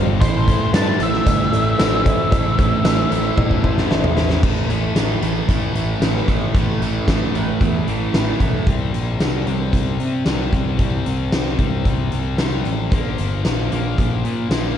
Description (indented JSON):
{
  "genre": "classic rock",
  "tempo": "113 BPM",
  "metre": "4/4",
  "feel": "straight",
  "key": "unclear",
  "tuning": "A4 = 439 Hz",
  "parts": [
    { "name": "reed electric piano", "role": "accompaniment", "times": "0.0-4.4 s", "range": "E4 to D5", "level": "-27 LUFS", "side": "left 3 dB", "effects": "harmonic tremolo, slapback echo" },
    { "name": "overdriven electric guitar", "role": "riff", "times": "0.0-14.8 s", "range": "A2 to F4", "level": "-27 LUFS", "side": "left 9 dB", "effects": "none" },
    { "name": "overdriven semi-hollow guitar", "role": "riff", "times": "0.0-8.7 s", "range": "A2 to C4", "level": "-24 LUFS", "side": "right 10 dB", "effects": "phaser" },
    { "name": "fuzz picked electric bass", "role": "bass", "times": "0.0-14.7 s", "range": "G1 to C3", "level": "-22 LUFS", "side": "equal", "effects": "overdrive" },
    { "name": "octave-fuzz lead guitar", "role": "melody", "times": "0.2-3.9 s", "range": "C5 to A5", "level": "-23 LUFS", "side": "left 1 dB", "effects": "distortion" },
    { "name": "huge arena drum kit", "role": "drums", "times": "0.2-14.6 s", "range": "crash cymbal, hi-hat, kick drum, snare drum, tambourine, toms", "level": "-19 LUFS", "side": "equal", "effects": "vintage 12-bit sampler grit" },
    { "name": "cowbell", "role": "percussion", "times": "0.2-4.0 s", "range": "none", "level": "-33 LUFS", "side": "right 5 dB", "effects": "none" }
  ],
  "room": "light reverb",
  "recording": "cassette tape",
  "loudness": "-16 LUFS",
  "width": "side -9 dB against mid",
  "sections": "0.0-4.4 A section; 4.4-8.7 B section; 8.7-14.8 C section",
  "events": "drum fill 3.4-4.4",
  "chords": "0.2 Am; 4.4 A5; 8.7 C5; 12.9 Bb5"
}